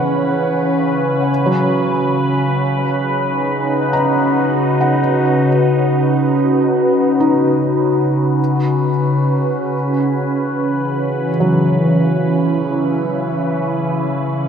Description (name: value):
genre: ambient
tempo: free time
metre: none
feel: none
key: C# minor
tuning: A4 = 440 Hz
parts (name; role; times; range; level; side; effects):
- evolving wavetable pad; sustained chords; 0.0-14.5 s; C#3 to B4; -14 LUFS; equal; phaser, built-in reverb
- felt-muted upright piano; arpeggios; 0.0-14.5 s; F#3 to A#5; -23 LUFS; equal; diffuse ambient delay
room: wet huge ambient reverb, RT60 7.2 s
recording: in a vast, echoing space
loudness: -14 LUFS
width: side -7 dB against mid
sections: 0.0-14.5 A section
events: none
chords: 0.0 C#m7; 1.3 B/C#; 8.4 C#m7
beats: free time